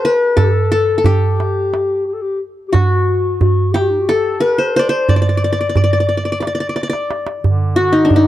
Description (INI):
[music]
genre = Turkish makam ensemble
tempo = 179 BPM (eighths)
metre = 7/8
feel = straight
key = D makam hicaz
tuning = A4 = 440 Hz
[part]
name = qanun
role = melody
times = 0.0-8.3 s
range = D4 to D5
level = -16 LUFS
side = left 1 dB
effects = none
[part]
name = breathy clarinet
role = second line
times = 0.0-7.1 s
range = Eb4 to D5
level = -20 LUFS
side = left 4 dB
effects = none
[part]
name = darbuka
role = percussion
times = 0.4-8.3 s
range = none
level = -15 LUFS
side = right 2 dB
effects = none
[part]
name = warm duduk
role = drone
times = 7.4-8.3 s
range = D3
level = -24 LUFS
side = right 2 dB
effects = none
[sound]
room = little or no reverb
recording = dry, close 1970s-style studio recording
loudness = -13 LUFS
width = side -13 dB against mid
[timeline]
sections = 0.0-7.4 A section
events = drum fill 6.8-7.4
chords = none